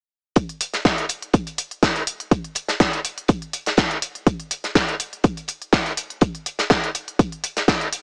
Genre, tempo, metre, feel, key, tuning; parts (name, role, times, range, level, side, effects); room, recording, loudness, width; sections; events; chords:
piano house; 123 BPM; 4/4; swing 53% on 16ths
electronic hi-hat; drums; 0.4-8.0 s; -32 LUFS; equal
electronic kick drum; drums; 0.4-7.8 s; -20 LUFS; equal
gated 80s drum kit; drums; 0.4-8.0 s; hi-hat, snare drum; -25 LUFS; equal; sidechain pumping on hats, high-pass filter on hats, high-pass filter on snare, high-pass filter on room
small room reverb; small speaker sound; -22 LUFS; mono
0.4-8.0 A section